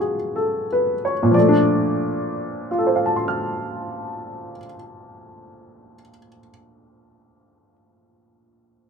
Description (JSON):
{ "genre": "solo jazz", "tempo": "44 BPM", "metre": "4/4", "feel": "swing 68% on 8ths, rubato", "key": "Bb major", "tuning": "A4 = 440 Hz", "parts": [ { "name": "warm baby grand piano", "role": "solo", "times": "0.0-8.9 s", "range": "Bb2 to F6", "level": "-19 LUFS", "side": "equal", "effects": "none" } ], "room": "moderate small room reverb, RT60 0.5 s", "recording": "none", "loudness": "-18 LUFS", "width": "side -6 dB against mid", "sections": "0.0-1.4 A section; 1.4-6.8 B section", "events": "slowing down 0.0-1.4", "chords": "0.0 B9; 1.4 Bbmaj7", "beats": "0.01 | 1.35 2.72 4.06 5.42" }